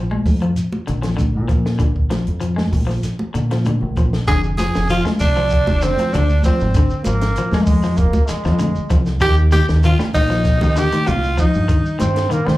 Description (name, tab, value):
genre	afrobeat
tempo	97 BPM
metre	4/4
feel	straight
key	F dorian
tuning	A4 = 440 Hz
part	electric guitar at the edge of break-up	arpeggios	0.0-12.6 s	C3 to Ab3	-22 LUFS	left 3 dB	lush chorus
part	deep dub fingered electric bass	bass	0.0-12.6 s	F1 to Eb3	-18 LUFS	equal	none
part	congas	percussion	0.1-12.6 s	none	-26 LUFS	right 1 dB	none
part	compact cocktail drum kit	drums	0.3-12.6 s	hi-hat, kick drum, snare drum	-21 LUFS	equal	none
part	shekere	percussion	0.3-12.6 s	none	-30 LUFS	right 1 dB	slapback echo
part	raspy tenor saxophone	melody	4.3-12.0 s	C4 to Ab4	-20 LUFS	right 1 dB	slapback echo
part	bright alto saxophone	second line	4.3-12.0 s	C4 to Ab4	-27 LUFS	right 4 dB	slapback echo
part	bright bass trombone	second line	7.0-12.6 s	Ab3 to C4	-23 LUFS	right 2 dB	slapback echo
room	light reverb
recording	live gig heard through the venue's PA, club reverb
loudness	-15 LUFS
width	side -17 dB against mid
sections	0.0-4.3 A section; 4.3-12.6 B section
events	none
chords	0.0 Bb7; 4.3 Fm6; 9.2 Eb69